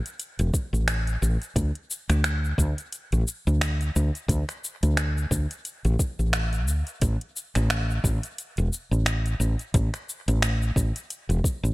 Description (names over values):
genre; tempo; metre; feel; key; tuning
sunset chillout; 88 BPM; 4/4; swing 57% on 16ths; unclear; A4 = 443 Hz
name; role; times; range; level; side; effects
smooth R&B drum kit; drums; 0.1-11.7 s; finger snaps, hi-hat, shaker; -30 LUFS; equal; studio reverb, dub echo
woody fretless electric bass; bass; 0.4-11.7 s; E1 to D2; -23 LUFS; equal; tube saturation
electronic kick drum; drums; 0.5-11.6 s; none; -24 LUFS; equal; studio reverb
room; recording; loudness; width
little or no reverb; echo-heavy mix; -23 LUFS; side -20 dB against mid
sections
0.0-11.7 A section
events
none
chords
none